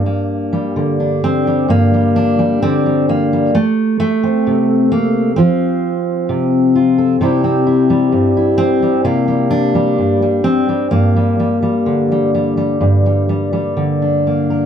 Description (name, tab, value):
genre	folk, solo fingerstyle acoustic guitar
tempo	65 BPM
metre	4/4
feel	rubato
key	G dorian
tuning	A4 = 440 Hz
part	fingerpicked steel-string acoustic guitar	solo	0.0-14.7 s	G2 to Bb4	-12 LUFS	equal	none
room	moderate studio ambience, RT60 0.5 s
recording	none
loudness	-12 LUFS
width	side -8 dB against mid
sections	0.0-14.7 A section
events	none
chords	0.0 Gm; 3.5 F; 7.2 C; 10.9 Gm